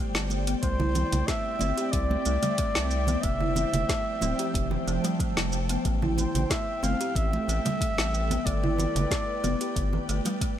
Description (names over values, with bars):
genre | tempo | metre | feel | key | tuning
organic downtempo | 92 BPM | 4/4 | straight | A minor | A4 = 439 Hz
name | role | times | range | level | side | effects
ethereal airy pad | sustained chords | 0.0-10.6 s | F3 to A5 | -34 LUFS | equal | ensemble chorus, built-in reverb, tremolo, sidechain pumping
buzzing kalimba | arpeggios | 0.0-10.6 s | G3 to G4 | -32 LUFS | equal | digital delay
bronze singing bowl | texture | 0.0-10.6 s | G4 | -53 LUFS | right 6 dB | none
round analog bass | bass | 0.1-10.2 s | D1 to C2 | -28 LUFS | equal | none
afro-pop drum kit | drums | 0.1-10.6 s | congas, hi-hat, shaker, snare drum | -31 LUFS | right 2 dB | none
congas | percussion | 0.1-10.4 s | none | -36 LUFS | right 4 dB | none
trumpet with bucket mute | melody | 0.6-10.4 s | C5 to F5 | -32 LUFS | equal | tape echo
electronic kick drum | drums | 0.6-10.6 s | none | -31 LUFS | equal | none
room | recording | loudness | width
light reverb, small room ambience | none | -24 LUFS | side -10 dB against mid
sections
0.0-10.6 A section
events
none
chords
0.0 G; 0.6 Cadd9; 3.2 F6; 5.8 Am7; 8.5 G